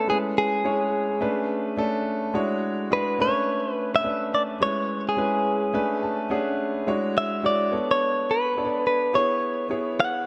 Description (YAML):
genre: R&B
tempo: 106 BPM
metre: 4/4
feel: swing 62% on 16ths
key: B dorian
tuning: A4 = 440 Hz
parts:
  - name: direct-recorded clean electric guitar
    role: melody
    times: 0.0-10.3 s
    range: G#4 to F#5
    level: -26 LUFS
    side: equal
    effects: tape echo
  - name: warm concert grand piano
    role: accompaniment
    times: 0.0-10.3 s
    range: G#3 to A5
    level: -28 LUFS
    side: equal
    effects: none
room: moderate plate reverb, RT60 3.3 s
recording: dark, warm production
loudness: -25 LUFS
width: mono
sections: 0.0-10.3 A section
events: grand piano fill 5.7-6.9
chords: 0.1 C#m7; 1.2 Bm9; 2.3 E13; 3.2 Bm9; 4.6 C#m7; 5.7 Bm9; 6.9 E13; 7.7 Bm9; 9.1 C#m7